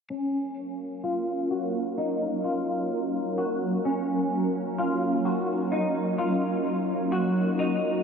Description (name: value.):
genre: dream pop.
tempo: 64 BPM.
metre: 4/4.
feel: straight.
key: F# major.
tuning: A4 = 439 Hz.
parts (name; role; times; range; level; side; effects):
shimmering ambient pad; sustained chords; 0.8-8.0 s; F#3 to E#5; -27 LUFS; equal; chorus, built-in reverb, phaser, low-pass filter.
semi-hollow electric guitar; arpeggios; 0.1-8.0 s; C#4 to F#4; -28 LUFS; equal; ensemble chorus, low-pass filter, diffuse ambient delay.
room: wet huge ambient reverb, RT60 8.0 s.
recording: dreamy mix soaked in reverb.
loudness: -25 LUFS.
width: side -6 dB against mid.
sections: 0.1-8.0 A section.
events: filter sweep 0.1-8.0.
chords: 0.1 F#maj7.